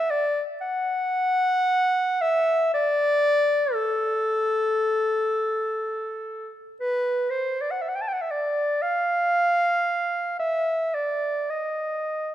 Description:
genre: classical, free, expressive piece for unaccompanied clarinet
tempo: 53-61 BPM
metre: 4/4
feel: rubato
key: unclear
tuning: A4 = 439 Hz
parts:
  - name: mellow clarinet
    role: solo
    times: 0.0-12.3 s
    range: A4 to A5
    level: -22 LUFS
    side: equal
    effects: none
room: moderate concert hall reverb, RT60 2.0 s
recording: minimal, uncompressed stereo recording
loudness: -22 LUFS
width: side -12 dB against mid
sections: 0.0-12.3 A section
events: none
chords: none

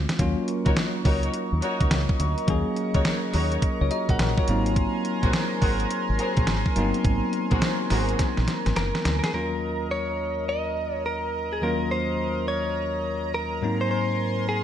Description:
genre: R&B, new jack swing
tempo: 105 BPM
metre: 4/4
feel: swing 64% on 16ths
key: Eb dorian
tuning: A4 = 444 Hz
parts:
  - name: bell-like tine electric piano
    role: accompaniment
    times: 0.0-14.6 s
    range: Eb2 to Gb5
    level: -28 LUFS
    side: left 1 dB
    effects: slow stereo tremolo
  - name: deep dub fingered electric bass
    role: bass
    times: 0.0-9.2 s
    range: Gb1 to Eb2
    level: -25 LUFS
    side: equal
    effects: none
  - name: clean 12-bit digital drum machine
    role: drums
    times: 0.1-9.3 s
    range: hi-hat, kick drum, snare drum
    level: -25 LUFS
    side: equal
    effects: vintage 12-bit sampler grit
  - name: chorused pulse-width pad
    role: sustained chords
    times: 0.2-14.6 s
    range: Bb4 to Db6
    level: -32 LUFS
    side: right 1 dB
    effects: none
  - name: muted studio string section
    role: stabs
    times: 0.7-8.1 s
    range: Eb4 to Db5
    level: -31 LUFS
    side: left 1 dB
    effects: ping-pong delay
  - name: direct-recorded clean electric guitar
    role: melody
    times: 8.8-14.6 s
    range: Ab4 to Eb5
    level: -28 LUFS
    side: equal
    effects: none
room: light reverb, digital ambience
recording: bright 1980s-style digital production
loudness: -22 LUFS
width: side -10 dB against mid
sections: 0.0-9.3 A section; 9.3-14.6 B section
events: drum fill 0.0, 8.2-9.3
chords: 0.2 Ebm7; 4.5 Ab9; 9.3 Ebm7; 13.6 Ab9

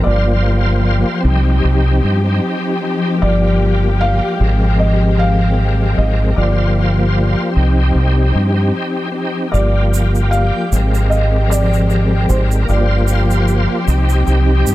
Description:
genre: trip hop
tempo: 76 BPM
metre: 4/4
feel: swing 55% on 16ths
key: G phrygian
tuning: A4 = 440 Hz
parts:
  - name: felt-muted upright piano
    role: melody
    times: 0.0-14.2 s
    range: C5 to F5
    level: -23 LUFS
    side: right 1 dB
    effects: tape echo
  - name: bright tonewheel organ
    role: accompaniment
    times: 0.0-14.7 s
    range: Ab3 to C5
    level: -20 LUFS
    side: equal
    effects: overdrive, chorus vibrato, fast rotary speaker, harmonic tremolo, vintage 12-bit sampler grit, tape echo
  - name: dark symphonic string section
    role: sustained chords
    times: 0.0-14.7 s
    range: F3 to G4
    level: -20 LUFS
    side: left 2 dB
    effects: none
  - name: deep dub fingered electric bass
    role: bass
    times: 0.0-14.7 s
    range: G1 to G2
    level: -14 LUFS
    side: equal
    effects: none
  - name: egg shaker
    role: percussion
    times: 9.5-14.7 s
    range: none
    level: -29 LUFS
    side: right 9 dB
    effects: none
  - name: backwards swelling texture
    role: texture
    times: 9.5-14.7 s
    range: G4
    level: -31 LUFS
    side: right 5 dB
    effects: none
room: little or no reverb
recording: dark, warm production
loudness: -12 LUFS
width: side -16 dB against mid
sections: 0.0-14.7 A section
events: none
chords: 0.1 Gm7; 1.6 Cm; 3.2 Gm7; 4.8 Abmaj7; 6.4 Gm7; 8.0 Cm; 9.5 Gm7; 11.1 Abmaj7; 12.7 Gm7

